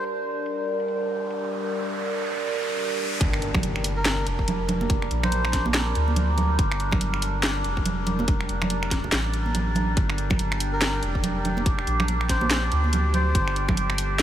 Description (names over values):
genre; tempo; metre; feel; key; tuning
deep dubstep; 142 BPM; 4/4; swing 59% on 16ths, half-time; G minor; A4 = 438 Hz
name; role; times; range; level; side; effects
melodica; melody; 0.0, 4.0-5.7, 10.7-13.6 s; Bb4 to C5; -34 LUFS; left 1 dB; dub echo
overtone-sweeping drone; sustained chords; 0.0-14.2 s; G3 to Bb4; -28 LUFS; right 1 dB; chorus, built-in reverb, phaser
garage drum kit; drums; 0.0-14.2 s; finger snaps, handclaps, hi-hat, snare drum; -28 LUFS; equal; overdrive, low-pass filter on hats, low-pass filter on snare
riser and impact; sound effects; 0.7-4.9 s; none; -33 LUFS; equal; none
soft dub sub bass; bass; 3.2-14.2 s; F1 to D2; -26 LUFS; equal; none
electronic kick drum; drums; 3.2-13.8 s; none; -24 LUFS; equal; overdrive
congas; percussion; 3.5-13.8 s; none; -30 LUFS; right 3 dB; dub echo
room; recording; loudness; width
moderate huge ambient reverb, RT60 8.4 s; dreamy mix soaked in reverb; -22 LUFS; side -11 dB against mid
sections
0.0-3.2 A section; 3.2-14.2 B section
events
riser 0.7-3.2; drop 3.2-14.2; impact 3.2-4.9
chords
0.0 Gm